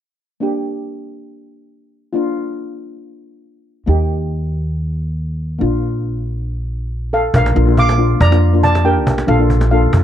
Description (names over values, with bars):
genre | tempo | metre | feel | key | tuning
calypso | 139 BPM | 4/4 | swing 54% on 16ths | Bb major | A4 = 441 Hz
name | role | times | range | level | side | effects
steel pan | accompaniment | 0.4-9.9 s | Bb3 to G4 | -20 LUFS | left 2 dB | none
upright bass | bass | 3.9-10.0 s | Bb1 to F2 | -16 LUFS | equal | none
steel pan | melody | 7.1-10.0 s | A4 to D6 | -17 LUFS | right 1 dB | none
cajon | drums | 7.3-10.0 s | none | -20 LUFS | equal | none
room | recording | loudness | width
little or no reverb | dry, close 1970s-style studio recording | -14 LUFS | side -11 dB against mid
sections
0.4-7.3 A section; 7.3-10.0 B section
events
none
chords
0.4 Gm; 2.1 Bb; 3.9 Eb; 5.6 Bb